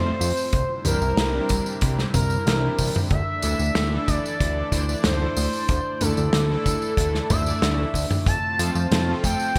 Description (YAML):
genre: synthwave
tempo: 93 BPM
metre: 4/4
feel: straight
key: D minor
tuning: A4 = 440 Hz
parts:
  - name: expressive portamento lead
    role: melody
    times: 0.0-9.6 s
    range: A4 to A5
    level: -29 LUFS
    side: equal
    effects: lush chorus, digital delay
  - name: chorused pulse-width pad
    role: sustained chords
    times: 0.0-9.6 s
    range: G3 to D5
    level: -34 LUFS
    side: equal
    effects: sidechain pumping
  - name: thumb-piano-like synth pluck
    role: arpeggios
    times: 0.0-9.6 s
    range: C3 to D5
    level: -36 LUFS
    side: equal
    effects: none
  - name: analog synth brass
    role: stabs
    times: 0.0-9.6 s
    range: C3 to D5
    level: -35 LUFS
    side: equal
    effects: chorus, cassette tape
  - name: fat analog bass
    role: bass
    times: 0.0-9.6 s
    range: C2 to F2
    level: -27 LUFS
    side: equal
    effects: tube saturation
  - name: loose indie drum kit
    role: drums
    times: 0.2-9.6 s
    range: hi-hat, snare drum, tambourine, toms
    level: -28 LUFS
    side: equal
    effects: gated reverb
  - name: kick drum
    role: drums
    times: 0.5-9.6 s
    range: none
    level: -28 LUFS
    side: equal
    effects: none
room: light reverb, small room ambience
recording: bright 1980s-style digital production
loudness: -23 LUFS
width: mono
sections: 0.0-9.6 A section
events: none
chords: 0.0 F; 0.5 Cadd9; 3.1 Dsus2; 8.3 F